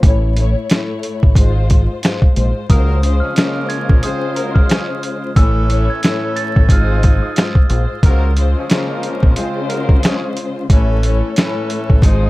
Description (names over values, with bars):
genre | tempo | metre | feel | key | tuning
hip hop, boom-bap hip-hop | 90 BPM | 4/4 | swing 56% on 16ths | unclear | A4 = 441 Hz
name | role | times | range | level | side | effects
dark studio string section | accompaniment | 0.0-12.3 s | Ab2 to C#5 | -21 LUFS | left 3 dB | high-pass filter, low-pass filter, plate reverb
deep dub fingered electric bass | bass | 0.0-12.3 s | Ab1 to Db2 | -15 LUFS | equal | none
boom bap sampler-style drum kit | drums | 0.0-12.2 s | hi-hat, kick drum, snare drum | -12 LUFS | equal | none
glockenspiel with rubber mallets | melody | 2.7-7.4 s | Eb6 to A6 | -26 LUFS | right 3 dB | high-pass filter, low-pass filter, plate reverb
warm horn section | stabs | 2.7-12.3 s | E3 to C5 | -26 LUFS | right 2 dB | high-pass filter, low-pass filter, plate reverb, digital delay
room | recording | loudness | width
little or no reverb | dark, warm production, vinyl crackle | -12 LUFS | side -19 dB against mid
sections
0.0-12.3 A section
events
none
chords
0.0 A; 1.4 Ab6; 2.7 Dbmaj7; 5.4 A; 6.7 Ab6; 8.0 Dbmaj7; 10.7 A